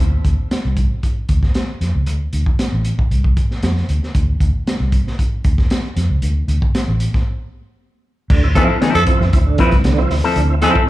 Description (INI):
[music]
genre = funk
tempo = 116 BPM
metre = 4/4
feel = straight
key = D minor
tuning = A4 = 438 Hz
[part]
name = vintage muted fingered electric bass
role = bass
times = 0.0-10.7 s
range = A1 to F2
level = -17 LUFS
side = equal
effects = none
[part]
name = crunchy breakbeat drum kit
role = drums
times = 0.2-10.9 s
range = crash cymbal, hi-hat, kick drum, snare drum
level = -17 LUFS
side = equal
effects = none
[part]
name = overdriven tonewheel organ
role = stabs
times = 8.3-10.8 s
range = D3 to E4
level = -21 LUFS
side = right 5 dB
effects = chorus vibrato, fast rotary speaker, slapback echo
[part]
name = growling tenor saxophone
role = second line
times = 8.6-10.7 s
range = A4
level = -20 LUFS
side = right 3 dB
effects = slapback echo
[part]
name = electric guitar with an envelope filter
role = accompaniment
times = 8.6-10.8 s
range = F3 to B4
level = -18 LUFS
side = left 4 dB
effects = slapback echo
[sound]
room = studio reverb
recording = live gig heard through the venue's PA, club ambience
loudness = -14 LUFS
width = side -16 dB against mid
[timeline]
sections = 0.0-8.3 A section; 8.3-10.9 B section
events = break 7.3-8.3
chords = 0.0 D7(no3); 8.3 Dm9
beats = 0.51 1.03 1.55 | 2.07 2.59 3.11 3.63 | 4.15 4.67 5.18 5.71 | 6.22 6.74 7.26 7.78 | 8.30 8.82 9.33 9.85 | 10.37